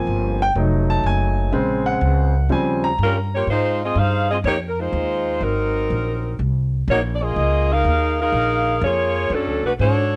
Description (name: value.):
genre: jazz, big band swing.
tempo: 124 BPM.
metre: 4/4.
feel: swing 68% on 8ths.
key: Ab major.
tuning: A4 = 438 Hz.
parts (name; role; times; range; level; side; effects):
clear baby grand piano; accompaniment; 0.0-3.4 s; Db3 to Bb5; -23 LUFS; equal; none.
upright bass; bass; 0.0-10.2 s; F1 to Ab2; -24 LUFS; equal; none.
mellow saxophone section; melody; 3.0-10.2 s; Gb3 to F5; -22 LUFS; equal; slapback echo.
room: little or no reverb.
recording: dry, close 1970s-style studio recording.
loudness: -20 LUFS.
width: mono.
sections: 0.0-3.5 A section; 3.5-10.2 B section.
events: grand piano solo 0.0-3.5.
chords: 0.0 Ab6; 0.6 F7b9; 1.5 Bbm7; 2.5 Eb13; 3.5 Ab6; 5.4 Ab9; 7.4 Db69; 9.3 Bm9.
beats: 0.09 0.57 1.06 | 1.54 2.03 2.51 3.00 | 3.48 3.97 4.45 4.94 | 5.42 5.91 6.39 6.88 | 7.36 7.85 8.33 8.82 | 9.30 9.79.